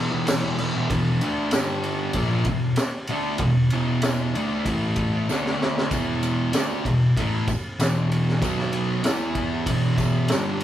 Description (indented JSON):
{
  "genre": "garage rock duo or trio",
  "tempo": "96 BPM",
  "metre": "4/4",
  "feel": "straight",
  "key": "unclear",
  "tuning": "A4 = 438 Hz",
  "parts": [
    { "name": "fuzz guitar", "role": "riff", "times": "0.0-10.6 s", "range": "E2 to E4", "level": "-22 LUFS", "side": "equal", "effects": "distortion" },
    { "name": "raw garage drum kit", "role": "drums", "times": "0.3-10.6 s", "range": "crash cymbal, kick drum, ride cymbal, snare drum", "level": "-26 LUFS", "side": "equal", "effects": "none" },
    { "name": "tambourine", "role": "percussion", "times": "0.3-10.5 s", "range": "none", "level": "-40 LUFS", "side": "right 7 dB", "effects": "none" }
  ],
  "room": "light reverb",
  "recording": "band playing live in one room",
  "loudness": "-21 LUFS",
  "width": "side -11 dB against mid",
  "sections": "0.9-5.9 A section; 5.9-10.6 B section",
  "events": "drum fill 5.3-5.9",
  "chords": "0.0 E5; 1.5 G5; 2.2 E5; 4.7 A5; 5.3 D5; 5.9 E5; 8.4 B5; 9.0 E5"
}